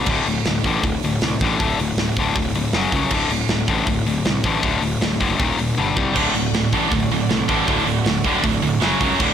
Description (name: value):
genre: heavy metal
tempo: 158 BPM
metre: 4/4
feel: straight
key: D major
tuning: A4 = 440 Hz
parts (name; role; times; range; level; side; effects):
- high-gain distorted guitar; riff; 0.0-9.3 s; D2 to G3; -20 LUFS; left 5 dB; distortion
- fuzz picked electric bass; bass; 0.1-9.3 s; D1 to C#2; -25 LUFS; right 1 dB; overdrive
- tight metal drum kit; drums; 0.1-9.3 s; crash cymbal, hi-hat, kick drum, snare drum, toms; -23 LUFS; right 2 dB; none
- clear symphonic string section; sustained chords; 6.1-9.3 s; C#3 to D5; -30 LUFS; right 5 dB; none
- scooped high-gain guitar; riff; 6.1-9.3 s; D2 to F#3; -21 LUFS; right 12 dB; distortion
room: little or no reverb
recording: blown-out, overdriven recording, overdrive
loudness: -17 LUFS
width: side -9 dB against mid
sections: 0.0-9.3 A section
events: drum fill 5.8-6.2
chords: 0.1 D5; 2.7 F#5; 3.1 D5; 5.4 Eb5; 5.8 G5; 6.2 D; 8.8 F#5